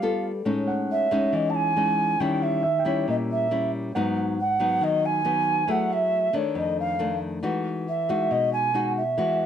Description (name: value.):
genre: bossa nova.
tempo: 138 BPM.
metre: 4/4.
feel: straight.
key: E major.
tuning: A4 = 440 Hz.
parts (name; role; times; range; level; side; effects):
breathy alto ocarina; melody; 0.0-9.5 s; C#5 to A5; -24 LUFS; right 2 dB; none.
nylon-string guitar; accompaniment; 0.0-9.5 s; F2 to A4; -26 LUFS; left 2 dB; none.
warm concert grand piano; accompaniment; 0.7-6.6 s; E5 to G5; -33 LUFS; right 4 dB; none.
room: light reverb.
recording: none.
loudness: -22 LUFS.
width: side -9 dB against mid.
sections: 0.0-9.5 A section.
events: none.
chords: 0.5 Amaj7#11; 2.2 D#7b9; 3.9 G#m7; 5.7 F#m9; 6.6 F6; 7.4 Emaj9.